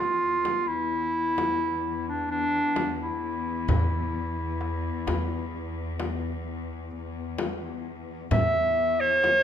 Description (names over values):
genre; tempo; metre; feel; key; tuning
Turkish makam ensemble; 130 BPM (eighths); 10/8; straight; unclear; A4 = 439 Hz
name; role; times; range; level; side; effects
clear clarinet; melody; 0.0-9.4 s; D4 to E5; -25 LUFS; right 1 dB; none
rich chamber cello section; drone; 0.0-9.4 s; E2; -34 LUFS; left 5 dB; none
darbuka; percussion; 0.5-9.4 s; none; -32 LUFS; right 3 dB; none
frame drum; percussion; 0.5-9.4 s; none; -32 LUFS; left 4 dB; none
upright bass; bass; 3.7-8.7 s; E2; -30 LUFS; equal; none
room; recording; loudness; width
moderate recital hall reverb, RT60 1.6 s; minimal, uncompressed stereo recording; -25 LUFS; side -9 dB against mid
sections
0.0-9.4 A section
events
none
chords
none